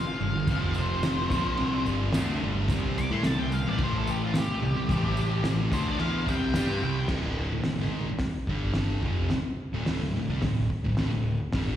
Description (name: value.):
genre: garage rock duo or trio.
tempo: 109 BPM.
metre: 4/4.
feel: straight.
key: unclear.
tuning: A4 = 441 Hz.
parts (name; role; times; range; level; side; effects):
octave-fuzz lead guitar; melody; 0.0-7.1 s; F4 to D6; -33 LUFS; left 1 dB; distortion, slapback echo.
thick fuzz guitar; riff; 0.2-11.8 s; D2 to G4; -29 LUFS; equal; distortion, slapback echo.
fuzz picked electric bass; bass; 0.2-11.8 s; D1 to A2; -30 LUFS; equal; overdrive, tube saturation.
cloth-damped thuddy drum kit; drums; 0.5-11.7 s; crash cymbal, hi-hat, kick drum, snare drum; -31 LUFS; equal; none.
tambourine; percussion; 0.5-6.9 s; none; -47 LUFS; right 3 dB; none.
room: light reverb.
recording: live gig heard through the venue's PA, recital hall reverb.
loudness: -25 LUFS.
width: side -11 dB against mid.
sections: 0.0-7.1 A section; 7.1-11.8 B section.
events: lead electric guitar solo 0.0-7.1.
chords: 0.5 F5; 1.3 G5; 2.7 C5; 3.7 A5; 4.4 C5; 4.9 A5; 5.7 C5; 7.1 D5; 8.5 G5; 9.0 D5.